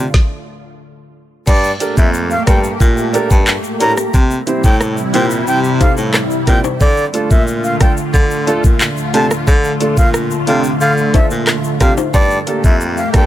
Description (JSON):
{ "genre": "dancehall", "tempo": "90 BPM", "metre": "4/4", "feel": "straight", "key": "D minor", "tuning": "A4 = 435 Hz", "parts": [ { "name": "lush unison pad", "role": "sustained chords", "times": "0.0-13.3 s", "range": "C3 to G4", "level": "-20 LUFS", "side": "equal", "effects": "chorus, phaser, sidechain pumping" }, { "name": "warm baritone saxophone", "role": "bass", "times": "0.0-13.3 s", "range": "F2 to D3", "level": "-18 LUFS", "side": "equal", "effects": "none" }, { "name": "island pop drum kit", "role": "drums", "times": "0.1-13.3 s", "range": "crash cymbal, handclaps, hi-hat, kick drum, rim click, shaker, snare drum", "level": "-13 LUFS", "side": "equal", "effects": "vintage 12-bit sampler grit" }, { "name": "breathy bright concert flute", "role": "melody", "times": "1.5-13.3 s", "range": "D5 to Bb5", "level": "-19 LUFS", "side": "equal", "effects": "tape echo" }, { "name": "egg shaker and timbales", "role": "percussion", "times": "1.5-13.3 s", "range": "none", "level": "-26 LUFS", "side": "left 9 dB", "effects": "none" }, { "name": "warm grand piano", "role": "accompaniment", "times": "1.8-13.3 s", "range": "A3 to D5", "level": "-19 LUFS", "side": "right 2 dB", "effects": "sidechain pumping" } ], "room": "small room ambience", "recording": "none", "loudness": "-11 LUFS", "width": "side -13 dB against mid", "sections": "0.0-1.5 A section; 1.5-13.3 B section", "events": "stop 0.1-1.5", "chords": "0.0 Dm; 1.5 Gmadd9; 4.1 C; 6.8 Dm; 12.1 Gmadd9" }